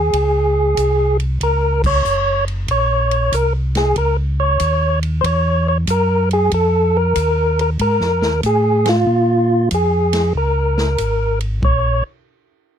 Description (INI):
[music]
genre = soul jazz organ trio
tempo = 94 BPM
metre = 4/4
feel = swing 67% on 8ths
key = Bb minor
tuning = A4 = 440 Hz
[part]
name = percussive tonewheel organ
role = melody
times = 0.0-12.0 s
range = F4 to Db5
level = -16 LUFS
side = equal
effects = slow rotary speaker
[part]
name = mellow tonewheel organ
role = bass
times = 0.0-12.0 s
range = Gb1 to Bb2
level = -18 LUFS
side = equal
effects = stopped rotary speaker
[part]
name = swinging big-band drum kit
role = drums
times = 0.1-11.8 s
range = crash cymbal, hi-hat, kick drum, ride cymbal, snare drum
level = -26 LUFS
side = equal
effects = none
[sound]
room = light reverb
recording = dry, close 1970s-style studio recording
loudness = -14 LUFS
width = side -8 dB against mid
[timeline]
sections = 0.0-11.6 A section; 11.6-12.8 B section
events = band accent 1.7-2.0, 8.8-9.1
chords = 0.0 Bbm7 (rootless); 1.4 Gb7; 6.5 F7#9; 9.1 Bbm7; 11.6 Bbm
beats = 0.13 0.77 | 1.41 2.05 2.69 3.32 | 3.96 4.60 5.24 5.88 | 6.52 7.16 7.80 8.44 | 9.08 9.72 10.36 10.99 | 11.63